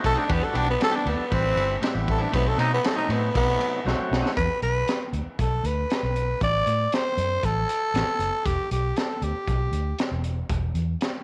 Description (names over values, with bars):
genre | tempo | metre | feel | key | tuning
straight-eighth soul blues | 118 BPM | 4/4 | straight | E minor | A4 = 441 Hz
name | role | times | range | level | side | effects
overdriven tonewheel organ | accompaniment | 0.0-4.3 s | C3 to B4 | -33 LUFS | equal | slow rotary speaker
vintage muted fingered electric bass | bass | 0.0-10.9 s | E1 to B2 | -29 LUFS | equal | none
crunchy breakbeat drum kit | drums | 0.0-11.1 s | hi-hat, kick drum, ride cymbal, snare drum | -31 LUFS | equal | none
growling tenor saxophone | melody | 0.1-10.2 s | B3 to D5 | -28 LUFS | equal | none
direct-recorded clean electric guitar | stabs | 0.2-4.4 s | A2 to G4 | -37 LUFS | equal | none
room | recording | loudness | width
light reverb, small room ambience | none | -25 LUFS | mono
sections
0.0-4.4 A section; 4.4-11.2 B section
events
tenor saxophone solo 0.0-4.4; drum fill 3.9-4.4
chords
0.3 Em7; 1.3 Am7; 2.3 B7b9; 4.4 N.C.; 6.4 Am; 8.5 Em7